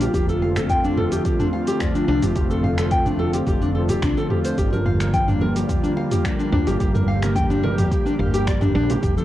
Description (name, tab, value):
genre	organic downtempo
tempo	108 BPM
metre	4/4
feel	straight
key	G minor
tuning	A4 = 440 Hz
part	airy breathy pad	sustained chords	0.0-9.2 s	D3 to G4	-24 LUFS	equal	chorus, sidechain pumping, cassette tape
part	nylon-string guitar	arpeggios	0.0-9.2 s	D4 to G5	-24 LUFS	left 1 dB	cassette tape, analog delay
part	woody fretless electric bass	bass	0.0-9.2 s	F1 to D2	-24 LUFS	equal	tube saturation, sidechain pumping
part	deep house drum kit	drums	0.0-9.2 s	cabasa, finger snaps, hi-hat, toms	-27 LUFS	right 1 dB	cassette tape
part	electronic kick drum	drums	0.1-9.1 s	none	-24 LUFS	equal	cassette tape
part	congas	percussion	4.7-9.2 s	none	-28 LUFS	left 1 dB	none
room	light reverb, digital ambience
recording	home recording on cassette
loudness	-18 LUFS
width	side -13 dB against mid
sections	0.0-9.2 A section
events	none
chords	0.1 Dm7/F; 4.6 Gm7